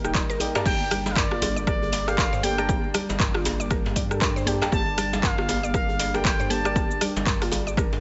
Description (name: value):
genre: afro house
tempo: 118 BPM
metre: 4/4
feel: swing 59% on 16ths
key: G minor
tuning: A4 = 443 Hz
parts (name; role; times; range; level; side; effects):
- expressive synth lead; melody; 0.0-7.0 s; Bb4 to A5; -32 LUFS; equal; chorus, dub echo
- warm analog pad; sustained chords; 0.0-8.0 s; G3 to G5; -37 LUFS; equal; chorus, sidechain pumping
- mallet-like synth pluck; arpeggios; 0.0-7.9 s; F4 to D5; -35 LUFS; equal; chorus, sidechain pumping, dub echo
- deep mellow chord stab; stabs; 0.0-8.0 s; Eb4 to Bb5; -36 LUFS; equal; chorus, phaser, sidechain pumping, dub echo
- round analog bass; bass; 0.0-8.0 s; Eb1 to G2; -35 LUFS; equal; sidechain pumping
- afro-pop drum kit; drums; 0.0-8.0 s; crash cymbal, handclaps, hi-hat, rim click, shaker, toms; -30 LUFS; equal; none
- electronic kick drum; drums; 0.1-7.9 s; none; -28 LUFS; equal; overdrive
- djembe; percussion; 0.3-8.0 s; none; -36 LUFS; equal; none
- congas; percussion; 0.7-7.9 s; none; -36 LUFS; equal; none
room: light reverb, digital ambience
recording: nothing above 7.9 kHz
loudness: -24 LUFS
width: mono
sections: 0.0-8.0 A section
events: none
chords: 0.0 Eb; 0.7 Gmadd9